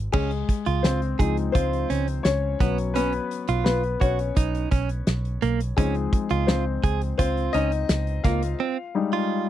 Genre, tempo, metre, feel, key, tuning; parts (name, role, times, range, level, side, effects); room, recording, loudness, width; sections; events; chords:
piano-driven pop; 85 BPM; 4/4; straight; A4 = 439 Hz
warm grand piano; accompaniment; 0.0-9.5 s; F3 to F5; -26 LUFS; left 6 dB
vintage muted picked electric bass; bass; 0.0-8.5 s; B1 to Db2; -26 LUFS; equal
direct-recorded clean electric guitar; riff; 0.1-9.5 s; Bb3 to Ab4; -27 LUFS; right 10 dB; vibrato effect
loose indie drum kit; drums; 0.1-8.6 s; crash cymbal, hi-hat, kick drum, snare drum; -23 LUFS; equal
little or no reverb; dry, close 1970s-style studio recording; -21 LUFS; side -12 dB against mid
0.1-9.5 A section
grand piano solo 0.1-9.5
0.1 Dbmaj7; 2.6 Bsus2; 5.8 Dbmaj7; 8.6 Fm7